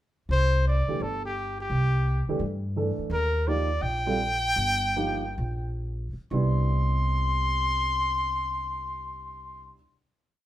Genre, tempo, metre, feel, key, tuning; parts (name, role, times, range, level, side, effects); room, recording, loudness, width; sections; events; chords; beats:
jazz; 120-172 BPM; 4/4; swing 64% on 8ths; C major; A4 = 440 Hz
warm trumpet; melody; 0.3-9.7 s; G4 to C6; -28 LUFS; left 1 dB
upright bass; bass; 0.3-9.7 s; G1 to G2; -27 LUFS; equal
dark grand piano; accompaniment; 0.9-9.7 s; C3 to A4; -31 LUFS; right 2 dB
wet studio reverb, RT60 0.7 s; band playing live in one room; -24 LUFS; side -13 dB against mid
0.3-6.3 A section; 6.3-10.3 final chord
slowing down 3.1-6.3
0.3 Cadd9; 3.1 Ebadd9; 6.3 Cmaj9
| 0.31 0.66 1.01 1.36 | 1.71 2.06 2.41 2.76 | 3.11 3.46 3.82 4.18 | 4.57 4.96 5.38 5.83 | 6.31 6.81 7.31 7.81 | 8.31 8.81 9.31